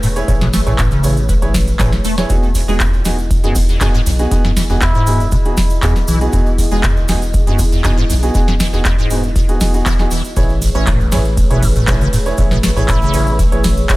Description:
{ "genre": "acid house", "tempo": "119 BPM", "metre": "4/4", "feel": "straight", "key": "E major", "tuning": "A4 = 438 Hz", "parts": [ { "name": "dark analog pad", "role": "sustained chords", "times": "0.0-14.0 s", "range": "A3 to D#5", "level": "-26 LUFS", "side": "left 1 dB", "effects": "chorus, sidechain pumping" }, { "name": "liquid acid bass", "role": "riff", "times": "0.0-14.0 s", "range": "E1 to C#4", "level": "-20 LUFS", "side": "equal", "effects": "phaser, tube saturation, ensemble chorus, sidechain pumping, analog delay" }, { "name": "round analog bass", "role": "bass", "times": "0.0-14.0 s", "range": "E1 to B1", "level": "-19 LUFS", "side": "equal", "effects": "tube saturation, sidechain pumping" }, { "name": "booming analog drum machine", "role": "drums", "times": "0.0-14.0 s", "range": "handclaps, hi-hat, ride cymbal, snare drum", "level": "-21 LUFS", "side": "equal", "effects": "none" }, { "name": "tube shaker", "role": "percussion", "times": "0.0-14.0 s", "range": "none", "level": "-29 LUFS", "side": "right 3 dB", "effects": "analog delay" }, { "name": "warm grand piano", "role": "stabs", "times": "0.2-14.0 s", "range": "B3 to C#5", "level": "-22 LUFS", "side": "right 2 dB", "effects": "analog delay" }, { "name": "electronic kick drum", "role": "drums", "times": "0.3-14.0 s", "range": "none", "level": "-16 LUFS", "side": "equal", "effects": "overdrive" }, { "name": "trumpet with cup mute", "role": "melody", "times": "4.8-5.3, 12.9-13.4 s", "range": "E4", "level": "-23 LUFS", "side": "right 1 dB", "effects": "analog delay" } ], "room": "little or no reverb", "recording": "echo-heavy mix", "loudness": "-12 LUFS", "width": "side -19 dB against mid", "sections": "0.0-14.0 A section", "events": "drum fill 1.8-2.3", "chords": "0.0 Amaj9; 2.3 Emaj9; 10.4 Amaj9" }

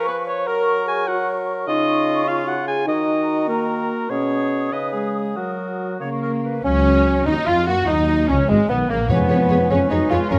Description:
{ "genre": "classical, dramatic, fast romantic movement for symphony orchestra", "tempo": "98 BPM (dotted quarters)", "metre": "6/8", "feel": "rubato", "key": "F# major", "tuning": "A4 = 438 Hz", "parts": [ { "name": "bright clarinet", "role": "second line", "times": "0.0-10.4 s", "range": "G#3 to C#5", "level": "-31 LUFS", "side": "equal", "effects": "none" }, { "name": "mellow cor anglais", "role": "second line", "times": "0.0-10.4 s", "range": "G#3 to G#5", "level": "-28 LUFS", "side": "equal", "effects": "none" }, { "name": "mellow large flute ensemble", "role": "second line", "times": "0.0-10.4 s", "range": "C#4 to D#6", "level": "-32 LUFS", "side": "equal", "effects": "none" }, { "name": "warm bassoon", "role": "accompaniment", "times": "0.0-10.4 s", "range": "B2 to F#4", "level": "-26 LUFS", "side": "equal", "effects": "none" }, { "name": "mellow French horn section", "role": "sustained chords", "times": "0.0-10.4 s", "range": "B2 to C#5", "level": "-27 LUFS", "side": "equal", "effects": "none" }, { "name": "warm symphonic cello section", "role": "bass", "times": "6.0-10.4 s", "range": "G#3 to F#4", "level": "-26 LUFS", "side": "equal", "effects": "none" }, { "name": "dark symphonic violin section", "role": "melody", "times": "6.6-10.4 s", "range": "G#3 to C#5", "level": "-32 LUFS", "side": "equal", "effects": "none" }, { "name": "clear symphonic violin section", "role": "second line", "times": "6.6-10.4 s", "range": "G#3 to B4", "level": "-36 LUFS", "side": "equal", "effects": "none" }, { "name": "warm symphonic viola section", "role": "accompaniment", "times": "6.6-10.4 s", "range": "G#3 to A#4", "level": "-30 LUFS", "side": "equal", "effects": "none" }, { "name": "rich symphonic double bass section", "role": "bass", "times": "6.6-10.4 s", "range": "G#1 to F#2", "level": "-24 LUFS", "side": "equal", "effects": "none" }, { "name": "timpani", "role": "percussion", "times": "9.1-9.7 s", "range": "E#2", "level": "-26 LUFS", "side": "equal", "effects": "none" } ], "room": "moderate scoring stage reverb, RT60 1.7 s", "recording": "close, detailed microphones", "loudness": "-20 LUFS", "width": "mono", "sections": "0.0-6.6 A section; 6.6-10.4 A section", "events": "none", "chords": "0.5 F#; 1.7 C#; 2.9 D#m; 4.1 G#m/B; 4.7 C#sus2; 5.4 F#; 6.6 F#5/C#; 7.9 G#m7; 9.1 C#7/E#" }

